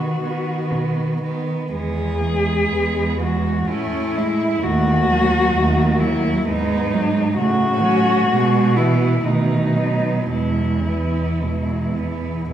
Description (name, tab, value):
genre	classical, lyrical piece for cello ensemble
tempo	53-66 BPM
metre	3/4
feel	rubato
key	E major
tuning	A4 = 440 Hz
part	warm cello	melody	0.0-12.4 s	D#4 to G#4	-22 LUFS	left 2 dB	none
part	rich cello	second line	0.0-12.5 s	F#3 to E4	-24 LUFS	right 5 dB	none
part	warm cello	accompaniment	0.0-12.5 s	B2 to A3	-24 LUFS	equal	none
part	warm cello	bass	0.0-12.5 s	D#2 to B2	-22 LUFS	right 2 dB	none
room	wet recital hall reverb, RT60 1.9 s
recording	heard from further back in the room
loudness	-17 LUFS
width	side -10 dB against mid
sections	0.0-12.5 A section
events	none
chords	0.0 B; 1.7 E; 3.7 Amaj7; 4.6 D#dim; 6.5 G#m7; 7.4 F#m/A; 8.3 E/B; 9.3 B7; 10.3 E